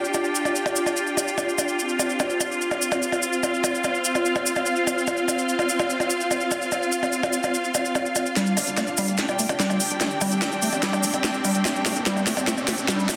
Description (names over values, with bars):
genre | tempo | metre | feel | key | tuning
psychedelic trance | 146 BPM | 4/4 | straight | unclear | A4 = 440 Hz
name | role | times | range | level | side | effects
swarming drone | sustained chords | 0.0-13.2 s | C4 to F4 | -30 LUFS | equal | built-in reverb, vintage 12-bit sampler grit
cabasa | percussion | 0.0-13.2 s | none | -32 LUFS | equal | none
dark studio string section | texture | 0.0-13.2 s | C4 to G5 | -29 LUFS | equal | none
techno drum kit | drums | 0.1-13.2 s | hi-hat, percussion blips, snare drum | -29 LUFS | equal | none
liquid acid bass | riff | 8.4-13.2 s | G3 to A3 | -29 LUFS | equal | chorus, dub echo
riser | sound effects | 10.1-13.2 s | none | -37 LUFS | equal | none
tight sequencer bass | bass | 8.6-13.2 s | F1 to G1 | -42 LUFS | equal | none
room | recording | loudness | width
moderate plate reverb, RT60 2.5 s | dense, heavily limited modern master | -23 LUFS | mono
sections
0.0-8.4 A section; 8.4-13.2 B section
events
build-up 8.4-13.2; drum fill 8.4-13.2; filter sweep on acid bass 8.4-13.2; riser 10.1-13.2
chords
0.0 G5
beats
| 0.14 0.56 0.97 1.38 | 1.79 2.20 2.61 3.02 | 3.43 3.84 4.25 4.67 | 5.08 5.49 5.90 6.31 | 6.72 7.13 7.54 7.95 | 8.36 8.78 9.19 9.60 | 10.01 10.42 10.83 11.24 | 11.65 12.06 12.47 12.88